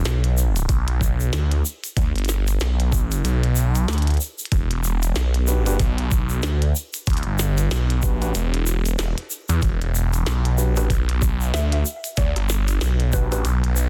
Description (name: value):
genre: glitch hop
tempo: 94 BPM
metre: 4/4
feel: swing 59% on 16ths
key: E minor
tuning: A4 = 439 Hz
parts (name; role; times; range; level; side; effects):
- phased detuned saw bass; bass; 0.0-13.9 s; E1 to E2; -22 LUFS; equal; phaser, tube saturation
- tube shaker; percussion; 0.0-13.9 s; none; -33 LUFS; equal; none
- glitchy drum kit; drums; 0.1-13.7 s; hi-hat, rim click, snare drum; -33 LUFS; equal; soft clipping on snare, studio reverb
- electronic kick drum; drums; 0.7-13.3 s; none; -24 LUFS; equal; overdrive, studio reverb
- tine electric piano; stabs; 5.5-13.4 s; D4 to B4; -32 LUFS; equal; sidechain pumping, digital delay
- woody wave-folded pluck; melody; 10.8-13.4 s; B4 to E5; -36 LUFS; equal; lush chorus, digital delay
room: little or no reverb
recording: dense, heavily limited modern master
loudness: -21 LUFS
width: mono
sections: 0.0-13.9 A section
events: none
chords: 0.0 Em7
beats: 0.05 0.69 1.33 | 1.97 2.61 3.24 3.88 | 4.52 5.16 5.80 6.44 | 7.07 7.71 8.35 8.99 | 9.63 10.27 10.90 11.54 | 12.18 12.82 13.46